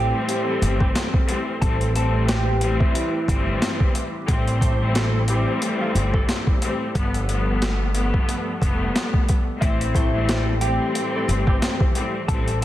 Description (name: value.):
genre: hip hop, boom-bap hip-hop.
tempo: 90 BPM.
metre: 4/4.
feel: swing 57% on 16ths.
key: A minor.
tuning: A4 = 440 Hz.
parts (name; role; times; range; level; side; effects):
electric guitar through a small old amp; melody; 0.0-3.8, 9.6-12.6 s; E4 to A5; -28 LUFS; equal; analog chorus, high-pass filter, low-pass filter, ping-pong delay.
bright studio string section; accompaniment; 0.0-12.6 s; G2 to C4; -25 LUFS; left 2 dB; high-pass filter, low-pass filter.
hollow soft pad; sustained chords; 0.0-12.6 s; E3 to B4; -33 LUFS; right 2 dB; chorus, high-pass filter, low-pass filter.
clear saxophone section; stabs; 0.0-11.6 s; C3 to C5; -33 LUFS; right 2 dB; high-pass filter, low-pass filter, ping-pong delay.
upright bass; bass; 0.0-12.6 s; F1 to A1; -23 LUFS; equal; none.
boom bap sampler-style drum kit; drums; 0.3-12.6 s; hi-hat, kick drum, snare drum; -22 LUFS; equal; overdrive.
room: light reverb, studio ambience.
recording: dense, heavily limited modern master, vinyl crackle.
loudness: -19 LUFS.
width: side -14 dB against mid.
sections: 0.0-12.6 A section.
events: none.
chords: 0.0 Am7; 4.3 Gsus4; 6.9 G9; 9.6 Am7.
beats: 0.28 0.95 | 1.62 2.28 2.95 3.62 | 4.28 4.95 5.62 6.28 | 6.95 7.62 8.28 8.95 | 9.62 10.28 10.95 11.62 | 12.28.